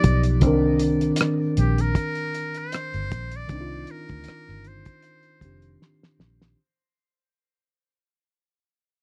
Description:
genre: R&B, neo-soul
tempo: 78 BPM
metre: 4/4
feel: swing 56% on 16ths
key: C minor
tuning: A4 = 440 Hz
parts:
  - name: trumpet with metal mute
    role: melody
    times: 0.0-5.8 s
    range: G4 to D5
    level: -35 LUFS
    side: equal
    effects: tape echo
  - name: tine electric piano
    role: accompaniment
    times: 0.0-6.6 s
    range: D3 to Bb4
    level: -26 LUFS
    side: equal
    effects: overdrive
  - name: vintage muted fingered electric bass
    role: bass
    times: 0.0-6.5 s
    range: F1 to D2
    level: -26 LUFS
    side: equal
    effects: none
  - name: cloth-damped thuddy drum kit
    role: drums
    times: 0.0-6.6 s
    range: hi-hat, kick drum, rim click, snare drum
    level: -25 LUFS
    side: equal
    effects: none
room: little or no reverb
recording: dry, close 1970s-style studio recording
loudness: -23 LUFS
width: mono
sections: 0.0-6.6 A section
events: fade-out 0.0-6.6; drum fill 5.8-6.6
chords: 0.4 Cm9

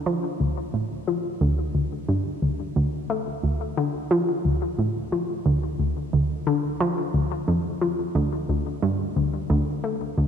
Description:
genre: ambient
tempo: 89 BPM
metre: 4/4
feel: straight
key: D minor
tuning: A4 = 440 Hz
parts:
  - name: analog pluck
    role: solo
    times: 0.1-10.3 s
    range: D2 to A3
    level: -22 LUFS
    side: equal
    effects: chorus, ping-pong delay
room: wet plate reverb, RT60 3.6 s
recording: dark, warm production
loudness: -22 LUFS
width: side -8 dB against mid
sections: 0.0-10.3 A section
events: none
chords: none

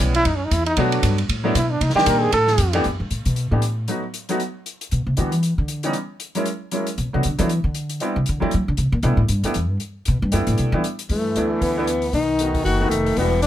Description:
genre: jazz, small-group swing and bop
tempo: 232 BPM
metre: 4/4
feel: swing 58% on 8ths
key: G major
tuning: A4 = 444 Hz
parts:
  - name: warm trombone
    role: second line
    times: 0.0-2.8, 11.1-13.5 s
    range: D#3 to Bb4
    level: -23 LUFS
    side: right 2 dB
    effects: none
  - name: bright upright piano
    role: accompaniment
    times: 0.0-13.3 s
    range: Eb3 to G4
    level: -23 LUFS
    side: equal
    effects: none
  - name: upright bass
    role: bass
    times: 0.0-13.5 s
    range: E1 to F#3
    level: -21 LUFS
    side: equal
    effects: none
  - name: open jazz drum kit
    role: drums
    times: 0.1-13.5 s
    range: hi-hat, kick drum, ride cymbal, snare drum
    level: -28 LUFS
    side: equal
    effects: none
  - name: breathy tenor saxophone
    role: melody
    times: 11.1-13.5 s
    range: A3 to F#4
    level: -21 LUFS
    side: left 3 dB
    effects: none
room: little or no reverb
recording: close, detailed microphones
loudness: -18 LUFS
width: side -12 dB against mid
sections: 0.0-2.8 A section; 2.8-11.1 A section; 11.1-13.5 B section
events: trombone solo 0.0-2.8; upright bass solo 2.8-11.1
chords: 0.3 C#madd9; 0.8 Bm7; 1.8 Cm7; 2.3 Fadd9; 2.8 Gadd9; 3.9 B7; 4.9 Em7; 5.9 F#7; 7.0 Bm7; 8.0 Am11; 8.5 D7; 9.0 G69; 12.1 B7

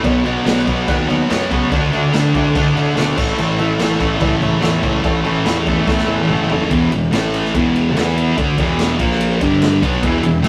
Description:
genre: garage rock duo or trio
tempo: 144 BPM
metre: 4/4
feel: straight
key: unclear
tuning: A4 = 436 Hz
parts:
  - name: combo organ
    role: sustained chords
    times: 0.0-6.7, 10.0-10.5 s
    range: E4 to A5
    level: -28 LUFS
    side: equal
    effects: none
  - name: thick fuzz guitar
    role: riff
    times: 0.0-10.5 s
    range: E2 to E4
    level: -18 LUFS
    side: equal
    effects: distortion
  - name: fuzz fingered electric bass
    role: bass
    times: 0.0-10.5 s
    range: E1 to B2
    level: -27 LUFS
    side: equal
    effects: overdrive
  - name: raw garage drum kit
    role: drums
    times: 0.0-10.5 s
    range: crash cymbal, kick drum, ride cymbal, snare drum, toms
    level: -24 LUFS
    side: equal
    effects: none
room: moderate studio reverb, RT60 0.6 s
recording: rough rehearsal-room recording, tube saturation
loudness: -16 LUFS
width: mono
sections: 0.0-6.7 A section; 6.7-10.5 B section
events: drum fill 5.9-6.7; transistor combo organ fill 5.9-6.7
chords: 0.0 B; 1.7 D; 3.2 A; 6.7 E5; 7.1 A5; 7.5 E5; 9.0 A#5; 9.4 G5; 9.8 E

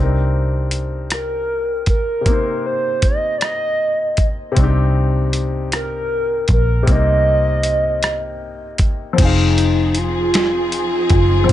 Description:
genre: slow six-eight R&B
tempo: 52 BPM (dotted quarters)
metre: 6/8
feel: straight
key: unclear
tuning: A4 = 440 Hz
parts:
  - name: warm grand piano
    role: accompaniment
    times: 0.0-11.5 s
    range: C3 to F5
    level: -24 LUFS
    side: left 5 dB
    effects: plate reverb
  - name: vintage muted fingered electric bass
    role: bass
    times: 0.0-11.5 s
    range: F1 to C2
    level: -18 LUFS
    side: equal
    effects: none
  - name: dusty soul sampler-style drum kit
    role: drums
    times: 0.7-11.5 s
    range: crash cymbal, hi-hat, kick drum, rim click, snare drum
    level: -17 LUFS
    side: equal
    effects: none
  - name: hollow clarinet-like synth lead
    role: melody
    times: 1.1-11.5 s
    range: Eb4 to Eb5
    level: -19 LUFS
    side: equal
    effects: chorus, plate reverb
  - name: warm studio string section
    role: sustained chords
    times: 9.2-11.5 s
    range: F3 to Ab4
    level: -26 LUFS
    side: left 4 dB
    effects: plate reverb
room: light reverb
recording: nothing above 10.6 kHz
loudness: -15 LUFS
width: side -12 dB against mid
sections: 0.0-9.2 A section; 9.2-11.5 B section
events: none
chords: 0.0 Cm9; 9.2 Fm7

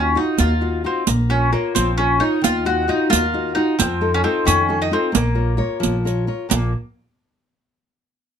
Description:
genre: italian folk, Italian serenade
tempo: 88 BPM (dotted quarters)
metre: 6/8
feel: straight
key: Bb minor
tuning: A4 = 441 Hz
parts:
  - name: mandolin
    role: melody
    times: 0.0-6.7 s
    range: Bb3 to Gb4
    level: -20 LUFS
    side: right 1 dB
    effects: none
  - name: nylon-string guitar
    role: accompaniment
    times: 0.0-6.7 s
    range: Bb2 to Db5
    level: -22 LUFS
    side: left 4 dB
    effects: none
  - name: upright bass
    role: bass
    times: 0.0-6.7 s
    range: Bb1 to F2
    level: -22 LUFS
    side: equal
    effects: none
  - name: riq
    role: percussion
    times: 0.4-6.7 s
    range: none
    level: -20 LUFS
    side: right 9 dB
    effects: none
room: light reverb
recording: close, detailed microphones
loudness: -16 LUFS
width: side -8 dB against mid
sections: 0.0-6.5 A section; 6.5-7.9 B section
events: none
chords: 0.0 Ebmadd9; 1.1 Bbm; 2.4 Ebmadd9; 3.8 F7; 5.1 Bbm; 6.5 Bb5

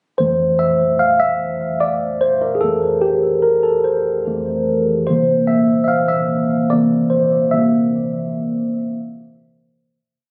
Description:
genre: R&B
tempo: 49 BPM (dotted quarters)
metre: 6/8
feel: straight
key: F major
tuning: A4 = 440 Hz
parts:
  - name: mellow tine electric piano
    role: solo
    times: 0.2-10.0 s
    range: F2 to F5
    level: -17 LUFS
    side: equal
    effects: phaser, digital delay
room: light reverb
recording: recorded on a phone in the room, club reverb, compression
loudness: -17 LUFS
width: mono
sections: 0.2-10.0 verse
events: tine electric piano solo 0.2-10.0; fade-out 7.5-10.0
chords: 0.2 Fmaj7; 5.1 C7

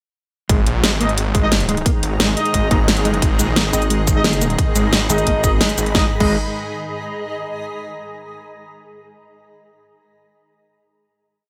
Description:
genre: dark technical drum and bass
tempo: 176 BPM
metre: 4/4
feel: straight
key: G# minor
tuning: A4 = 442 Hz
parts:
  - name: swarming drone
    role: sustained chords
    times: 1.1-6.1 s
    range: G#2 to D#4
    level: -30 LUFS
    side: equal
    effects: built-in reverb, sidechain pumping
  - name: mellow electric guitar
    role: arpeggios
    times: 0.5-6.4 s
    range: G#3 to A#3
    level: -26 LUFS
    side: equal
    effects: vintage 12-bit sampler grit, sidechain pumping, dub echo
  - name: detuned saw bass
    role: bass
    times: 0.5-6.4 s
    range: G#1 to A#1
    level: -23 LUFS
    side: equal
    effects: chorus
  - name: dubstep drum kit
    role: drums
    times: 0.5-6.3 s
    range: crash cymbal, hi-hat, shaker, snare drum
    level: -22 LUFS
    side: equal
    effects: studio reverb
  - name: electronic kick drum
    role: drums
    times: 0.5-6.3 s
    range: none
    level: -21 LUFS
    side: equal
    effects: studio reverb
  - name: granular cloud pad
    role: texture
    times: 1.8-7.3 s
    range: G#4 to B5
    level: -30 LUFS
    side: equal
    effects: built-in reverb, sidechain pumping
  - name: mellow brass ensemble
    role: stabs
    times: 1.0-6.3 s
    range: G#3 to D#5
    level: -26 LUFS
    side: equal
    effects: dub echo
  - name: pulsing pluck wobble bass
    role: bass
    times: 3.7-5.6 s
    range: G#1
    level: -23 LUFS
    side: equal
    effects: chorus, tube saturation
room: light reverb, digital ambience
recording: none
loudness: -18 LUFS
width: mono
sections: 0.5-5.9 drop; 5.9-7.3 final chord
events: drop 0.5-5.9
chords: 0.5 G#5

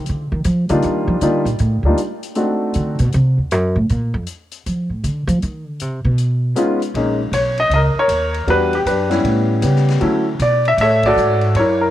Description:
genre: jazz piano trio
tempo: 157 BPM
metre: 4/4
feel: swing 65% on 8ths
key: unclear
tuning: A4 = 440 Hz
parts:
  - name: upright bass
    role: bass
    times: 0.0-11.9 s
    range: A#1 to F3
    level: -18 LUFS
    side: right 1 dB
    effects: none
  - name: swinging big-band drum kit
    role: drums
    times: 0.1-11.7 s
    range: hi-hat, kick drum, ride cymbal, snare drum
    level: -33 LUFS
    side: left 6 dB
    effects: none
  - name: clear grand piano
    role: melody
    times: 0.7-3.0, 6.6-11.9 s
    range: F#3 to E5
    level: -16 LUFS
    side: left 1 dB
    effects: none
room: light reverb, small room reverb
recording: 1960s-style stereo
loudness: -15 LUFS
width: side -13 dB against mid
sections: 0.0-7.0 A section; 7.0-11.9 B section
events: upright bass solo 0.0-7.0; band accent 11.0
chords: 0.1 Bb (rootless); 0.8 Ebmaj9; 2.4 D7b9; 3.9 Fadd11; 5.4 Cm; 6.2 Db7; 7.0 A#madd11; 8.5 Em7; 9.3 A7; 10.0 Dmaj7

